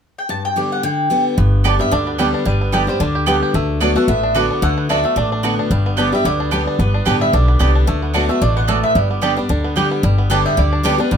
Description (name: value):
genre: bluegrass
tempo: 222 BPM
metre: 4/4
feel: swing 54% on 8ths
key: G major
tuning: A4 = 442 Hz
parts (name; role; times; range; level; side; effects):
- mandolin; melody; 0.2-11.2 s; B4 to A5; -21 LUFS; right 1 dB; none
- picked steel-string acoustic guitar; accompaniment; 0.3-11.2 s; G2 to G4; -20 LUFS; left 2 dB; none
- bluegrass banjo; melody; 1.4-11.2 s; G3 to G4; -24 LUFS; right 2 dB; none
- upright bass; bass; 1.4-11.2 s; G1 to D2; -18 LUFS; equal; none
- mandolin; stabs; 1.6-10.9 s; B3 to A5; -20 LUFS; right 6 dB; none
room: light reverb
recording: close, detailed microphones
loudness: -14 LUFS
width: side -7 dB against mid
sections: 0.3-1.4 A section; 1.4-10.0 B section; 10.0-11.2 B section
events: none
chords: 0.3 G; 1.4 Gadd9; 3.5 D6; 5.7 Gadd9; 7.9 D6; 9.0 G; 10.0 Gadd9